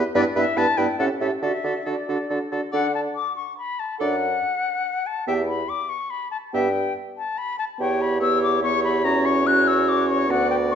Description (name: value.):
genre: quick classical-period movement for wind quintet.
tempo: 142 BPM.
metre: 3/4.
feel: straight.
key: D major.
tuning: A4 = 438 Hz.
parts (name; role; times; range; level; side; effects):
clear oboe; second line; 0.0-10.8 s; A4 to E5; -30 LUFS; left 2 dB; none.
warm French horn; accompaniment; 0.0-10.8 s; B3 to D4; -28 LUFS; right 1 dB; none.
warm clarinet; accompaniment; 0.0-10.8 s; E4 to A4; -26 LUFS; right 6 dB; none.
warm bassoon; bass; 0.0-10.8 s; D2 to D3; -26 LUFS; right 2 dB; none.
concert flute; melody; 0.1-10.8 s; D5 to F#6; -24 LUFS; left 6 dB; none.
room: wet recital hall reverb, RT60 1.5 s.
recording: dark, warm production, nothing above 7.8 kHz.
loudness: -20 LUFS.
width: side -8 dB against mid.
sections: 0.0-2.7 A section; 2.7-10.8 B section.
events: none.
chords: 0.1 Em/G; 1.0 A7; 1.4 D; 2.7 D5; 4.0 D/F#; 5.3 Em; 6.5 N.C.; 7.8 C#m7b5/E; 9.0 F#5/E.